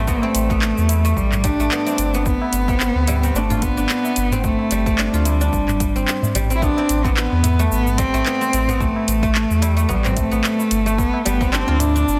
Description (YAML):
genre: organic downtempo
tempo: 110 BPM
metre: 4/4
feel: swing 56% on 16ths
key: A minor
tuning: A4 = 439 Hz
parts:
  - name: rich cello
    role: melody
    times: 0.0-12.2 s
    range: G3 to E4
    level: -23 LUFS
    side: equal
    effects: digital delay
  - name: guzheng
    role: arpeggios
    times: 0.0-12.2 s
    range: G3 to F4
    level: -27 LUFS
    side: equal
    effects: digital delay
  - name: warm sub bass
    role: bass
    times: 0.0-12.2 s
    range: G1 to E2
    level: -23 LUFS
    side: equal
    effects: sidechain pumping
  - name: afro-pop drum kit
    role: drums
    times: 0.1-12.2 s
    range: handclaps, hi-hat, shaker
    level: -28 LUFS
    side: equal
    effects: overdrive, small room ambience
  - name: electronic kick drum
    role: drums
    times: 0.1-11.5 s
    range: none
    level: -26 LUFS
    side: equal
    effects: small room ambience
  - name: tabla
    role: percussion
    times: 0.2-11.9 s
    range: none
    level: -32 LUFS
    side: equal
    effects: none
room: light reverb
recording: dense, heavily limited modern master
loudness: -19 LUFS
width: mono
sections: 0.0-12.2 A section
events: none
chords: 0.0 Am11; 2.3 G7sus4; 6.6 Am9; 11.0 G7sus4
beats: | 0.08 0.62 1.17 1.71 | 2.26 2.81 3.35 3.90 | 4.44 4.99 5.53 6.08 | 6.62 7.17 7.71 8.26 | 8.80 9.35 9.90 10.44 | 10.99 11.53 12.08